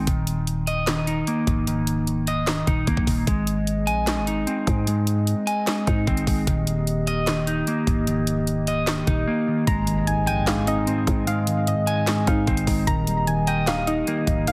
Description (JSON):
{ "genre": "hip hop, trap", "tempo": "150 BPM", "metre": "4/4", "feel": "half-time", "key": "Ab major", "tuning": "A4 = 441 Hz", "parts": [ { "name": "clean electric guitar", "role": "arpeggios", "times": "0.0-14.5 s", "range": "Eb3 to Ab5", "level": "-27 LUFS", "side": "equal", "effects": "subtle chorus, low-pass filter, tape echo" }, { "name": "growling 808-style bass", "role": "bass", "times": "0.0-14.5 s", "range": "Db1 to Ab2", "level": "-29 LUFS", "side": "equal", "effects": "none" }, { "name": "trap drum kit", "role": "drums", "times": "0.1-14.5 s", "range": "handclaps, hi-hat, kick drum, snare drum", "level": "-28 LUFS", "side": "equal", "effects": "none" }, { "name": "glass harmonica", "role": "sustained chords", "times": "3.3-14.5 s", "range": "Bb3 to Eb5", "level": "-34 LUFS", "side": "equal", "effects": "none" }, { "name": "soft round pluck", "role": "second line", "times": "9.7-14.5 s", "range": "Eb5 to Bb5", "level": "-30 LUFS", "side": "equal", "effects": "chorus, tape echo" }, { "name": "mellow tine electric piano", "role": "accompaniment", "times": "9.7-14.5 s", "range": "Ab2 to Eb5", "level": "-29 LUFS", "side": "equal", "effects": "low-pass filter" }, { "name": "impact", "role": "sound effects", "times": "9.8-11.3 s", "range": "none", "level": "barely audible", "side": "none", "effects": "none" } ], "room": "light reverb, digital ambience", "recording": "heavily compressed radio sound", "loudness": "-23 LUFS", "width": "mono", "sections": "0.0-9.7 A section; 9.7-14.5 B section", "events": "impact 9.7-11.3", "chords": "0.1 Eb5; 3.3 Ab; 6.5 Eb; 9.7 Ab; 12.9 Eb" }